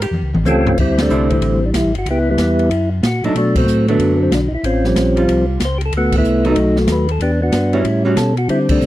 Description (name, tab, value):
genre	soul jazz organ trio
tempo	187 BPM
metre	4/4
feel	swing 64% on 8ths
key	D mixolydian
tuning	A4 = 438 Hz
part	archtop guitar, miked and amplified	accompaniment	0.0-8.2 s	D3 to G4	-21 LUFS	right 3 dB	none
part	mellow tonewheel organ	bass	0.0-8.9 s	G1 to D3	-19 LUFS	equal	slow rotary speaker
part	open jazz drum kit	drums	0.0-8.9 s	crash cymbal, hi-hat, kick drum, ride cymbal, snare drum, toms	-22 LUFS	equal	none
part	percussive tonewheel organ	melody	0.5-8.9 s	D3 to B#4	-16 LUFS	equal	slow rotary speaker
room	studio reverb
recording	dry, close 1970s-style studio recording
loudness	-13 LUFS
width	side -15 dB against mid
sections	0.8-8.9 A section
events	drum fill 0.1-0.8; band accent 0.9, 3.5, 6.1, 8.6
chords	0.1 A7alt; 0.8 D9sus4; 2.1 C#m7b5; 2.7 F#; 3.4 Bm7; 4.6 A7alt; 5.9 D69; 6.6 B7; 7.2 Em9; 7.8 A13